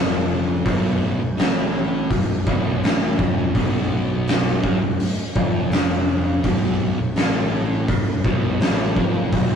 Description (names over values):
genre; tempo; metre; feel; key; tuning
stoner and doom metal; 83 BPM; 4/4; straight; unclear; A4 = 440 Hz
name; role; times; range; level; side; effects
thick fuzz guitar; riff; 0.0-9.6 s; B1 to A3; -23 LUFS; equal; distortion
fuzz fingered electric bass; bass; 0.0-9.6 s; B0 to A1; -27 LUFS; equal; overdrive
oversized low-tuned drum kit; drums; 0.7-9.5 s; hi-hat, kick drum, snare drum; -20 LUFS; equal; none
room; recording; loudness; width
light reverb; rough rehearsal-room recording, warm saturation; -18 LUFS; side -7 dB against mid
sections
0.0-9.6 A section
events
none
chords
none